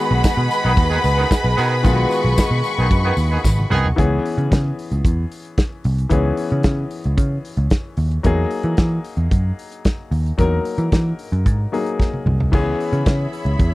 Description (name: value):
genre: disco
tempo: 112 BPM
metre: 4/4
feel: straight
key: C# dorian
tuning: A4 = 443 Hz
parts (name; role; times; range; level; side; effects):
- warm studio violin section; second line; 0.0-3.7 s; B4 to B5; -22 LUFS; equal; none
- clear baby grand piano; accompaniment; 0.0-13.7 s; D#3 to A#4; -25 LUFS; left 4 dB; none
- warm studio string section; sustained chords; 0.0-4.0, 12.5-13.7 s; G#4 to C#6; -25 LUFS; left 1 dB; none
- picked electric bass; bass; 0.1-13.7 s; G#1 to E3; -18 LUFS; equal; none
- warm soul drum kit; drums; 0.2-13.7 s; crash cymbal, hi-hat, kick drum, snare drum, toms; -18 LUFS; equal; none
- tambourine; percussion; 0.2-3.8 s; none; -36 LUFS; left 7 dB; none
- clear horn section; stabs; 0.6-3.9 s; D#3 to G#4; -21 LUFS; right 3 dB; none
room: little or no reverb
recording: dry, close 1970s-style studio recording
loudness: -16 LUFS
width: side -18 dB against mid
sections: 0.0-4.0 A section; 4.0-13.7 B section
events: drum fill 3.4-4.0, 12.0-12.5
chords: 0.0 B6; 4.0 C#m7; 8.2 Emaj9#11; 12.5 C#m7